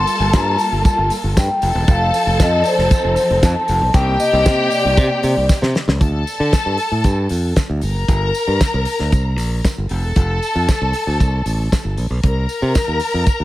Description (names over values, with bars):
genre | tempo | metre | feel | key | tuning
disco | 116 BPM | 4/4 | straight | G minor | A4 = 440 Hz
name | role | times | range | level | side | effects
vibraphone with soft mallets | melody | 0.0-5.5 s | C5 to C6 | -19 LUFS | left 2 dB | none
warm studio string section | second line | 0.0-13.4 s | G4 to Bb5 | -22 LUFS | left 2 dB | none
dark symphonic string section | sustained chords | 0.0-6.0 s | C3 to A4 | -25 LUFS | right 1 dB | none
modern bright fingered electric bass | bass | 0.0-13.4 s | E1 to D3 | -18 LUFS | equal | none
damped 70s drum kit | drums | 0.1-13.4 s | hi-hat, kick drum, snare drum | -18 LUFS | equal | none
tambourine | percussion | 0.1-13.4 s | none | -34 LUFS | right 5 dB | none
room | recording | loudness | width
studio reverb | none | -14 LUFS | side -16 dB against mid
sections
0.0-6.0 A section; 6.0-13.4 B section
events
drum fill 5.5-6.0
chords
0.0 Gm9; 1.6 F7; 3.9 Cm9; 6.0 Dm; 7.8 Gm; 9.9 F; 12.2 Cm7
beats
0.33 0.85 1.36 | 1.88 2.40 2.91 3.43 | 3.94 4.46 4.98 5.49 | 6.01 6.53 7.05 7.57 | 8.08 8.60 9.12 9.64 | 10.16 10.68 11.20 11.71 | 12.23 12.75 13.27